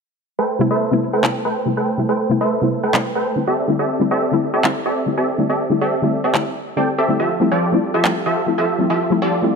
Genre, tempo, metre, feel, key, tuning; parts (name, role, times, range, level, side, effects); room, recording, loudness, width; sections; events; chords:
future bass; 141 BPM; 4/4; half-time; A4 = 441 Hz
supersaw stab; riff; 0.4-9.6 s; F3 to G5; -18 LUFS; right 1 dB; low-pass filter
soft round pluck; accompaniment; 0.6-9.6 s; C3 to E4; -20 LUFS; left 2 dB; chorus, ping-pong delay
electronic handclaps; drums; 1.2-8.1 s; -21 LUFS; right 1 dB
moderate lush hall reverb, RT60 1.7 s; -16 LUFS; side -5 dB against mid
0.4-9.6 A section
filter sweep on supersaw synth 0.4-9.6
0.4 Am7; 3.6 C6; 7.2 Fmaj9